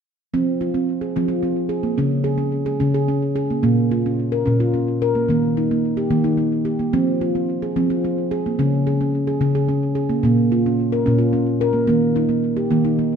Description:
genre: world meditative, meditative tuned percussion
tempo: 73 BPM (dotted quarters)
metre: 6/8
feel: straight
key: F minor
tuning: A4 = 443 Hz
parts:
  - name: handpan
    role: solo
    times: 0.3-13.2 s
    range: Bb2 to Bb4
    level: -17 LUFS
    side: equal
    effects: ping-pong delay
room: wet recital hall reverb, RT60 1.6 s, small room ambience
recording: none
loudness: -17 LUFS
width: side -7 dB against mid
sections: 0.3-13.2 A section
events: none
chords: 0.3 Fm; 2.0 Db5; 3.6 Bbm; 5.3 Eb; 6.9 Fm; 8.6 Db5; 10.2 Bbm; 11.9 Eb5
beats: | 0.34 1.17 | 1.99 2.82 | 3.64 4.47 | 5.29 6.12 | 6.94 7.77 | 8.59 9.42 | 10.24 11.06 | 11.89 12.71

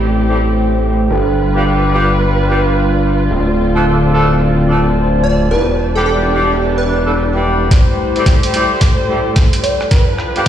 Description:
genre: glitch hop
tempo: 109 BPM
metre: 4/4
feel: swing 62% on 16ths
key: unclear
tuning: A4 = 435 Hz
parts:
  - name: muted studio string section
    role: sustained chords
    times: 0.0-10.5 s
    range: G2 to C5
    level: -19 LUFS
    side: right 1 dB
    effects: vintage 12-bit sampler grit, sidechain pumping
  - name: gritty driven synth bass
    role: bass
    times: 0.0-7.7 s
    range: D1 to A1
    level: -14 LUFS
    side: equal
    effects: distortion, tube saturation
  - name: warbly tape-like pad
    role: texture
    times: 0.0-10.5 s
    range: E4 to A5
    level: -20 LUFS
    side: equal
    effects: chorus, built-in reverb, sidechain pumping
  - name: mellow horn section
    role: stabs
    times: 0.3-10.4 s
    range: G3 to A4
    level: -19 LUFS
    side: equal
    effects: vintage 12-bit sampler grit, sidechain pumping, digital delay
  - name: plucky unison lead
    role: melody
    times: 5.2-10.1 s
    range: A4 to D5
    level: -20 LUFS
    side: right 1 dB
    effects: digital delay
  - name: boom bap sampler-style drum kit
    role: drums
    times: 7.7-10.5 s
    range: hi-hat, rim click, snare drum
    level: -22 LUFS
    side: right 1 dB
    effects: high-pass filter on snare, high-pass filter on hats, high-pass filter on cymbals
  - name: electronic kick drum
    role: drums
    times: 7.7-10.5 s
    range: none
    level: -11 LUFS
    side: equal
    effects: none
room: moderate lush hall reverb, RT60 2.2 s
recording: played on a big sound system in a bare room, stone room reverb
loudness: -11 LUFS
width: side -10 dB against mid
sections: 0.0-7.7 A section; 7.7-10.5 B section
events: build-up 7.7-10.5; drum fill 7.7-10.5; filter sweep on digital synth lead 7.7-10.5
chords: 0.0 Am7; 1.1 G7; 3.3 Dm7; 5.5 Em7; 7.7 Am7; 9.9 G7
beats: 0.01 0.56 | 1.11 1.66 2.21 2.76 | 3.31 3.86 4.41 4.96 | 5.51 6.06 6.61 7.16 | 7.71 8.26 8.81 9.37 | 9.92 10.47

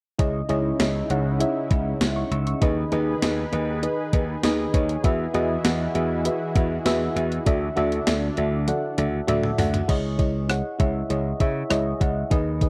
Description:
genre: 1980s-style pop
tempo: 99 BPM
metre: 4/4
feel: straight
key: C# minor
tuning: A4 = 437 Hz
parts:
  - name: mellow FM electric piano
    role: accompaniment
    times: 0.2-12.7 s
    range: D#4 to E6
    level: -28 LUFS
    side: equal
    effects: chorus
  - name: lush unison pad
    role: sustained chords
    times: 0.2-9.9 s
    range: C#3 to B4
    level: -33 LUFS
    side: equal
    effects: chorus
  - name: slap bass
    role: bass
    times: 0.2-12.7 s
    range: C#2 to C#3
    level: -29 LUFS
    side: equal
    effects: none
  - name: gated 80s digital drum machine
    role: drums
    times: 0.2-12.7 s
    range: crash cymbal, hi-hat, kick drum, rim click, snare drum, toms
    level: -26 LUFS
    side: equal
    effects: gated reverb, gated reverb snare
room: little or no reverb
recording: dry, close 1970s-style studio recording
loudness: -23 LUFS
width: mono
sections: 0.2-9.9 A section; 9.9-12.7 B section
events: drum fill 8.7-9.9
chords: 0.2 C#madd9; 2.6 G#m/D#; 5.0 Eadd9; 7.5 Dadd9; 9.9 C#madd9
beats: | 0.19 0.80 1.40 2.01 | 2.62 3.22 3.83 4.43 | 5.04 5.65 6.25 6.86 | 7.46 8.07 8.68 9.28 | 9.89 10.49 11.10 11.71 | 12.31

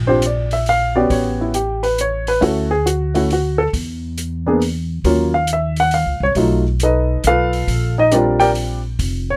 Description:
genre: jazz piano trio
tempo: 137 BPM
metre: 3/4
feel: swing 66% on 8ths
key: unclear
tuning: A4 = 441 Hz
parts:
  - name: upright bass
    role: bass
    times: 0.0-9.4 s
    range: F1 to E2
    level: -23 LUFS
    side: equal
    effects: none
  - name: dark baby grand piano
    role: melody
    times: 0.1-9.4 s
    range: Gb3 to G5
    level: -18 LUFS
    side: equal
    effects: none
  - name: open jazz drum kit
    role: drums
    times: 0.2-9.1 s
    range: hi-hat, kick drum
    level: -30 LUFS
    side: equal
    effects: none
room: little or no reverb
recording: close, detailed microphones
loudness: -18 LUFS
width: mono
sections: 0.0-9.4 A section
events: none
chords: 0.0 Bb6; 1.1 A13; 2.4 Dmaj7; 3.7 N.C.; 5.0 Ebm7; 6.4 B7#11; 7.7 Bb6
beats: 0.22 0.66 | 1.10 1.53 1.97 | 2.41 2.85 3.29 | 3.73 4.17 4.60 | 5.04 5.48 5.92 | 6.36 6.79 7.23 | 7.67 8.11 8.54 | 8.98

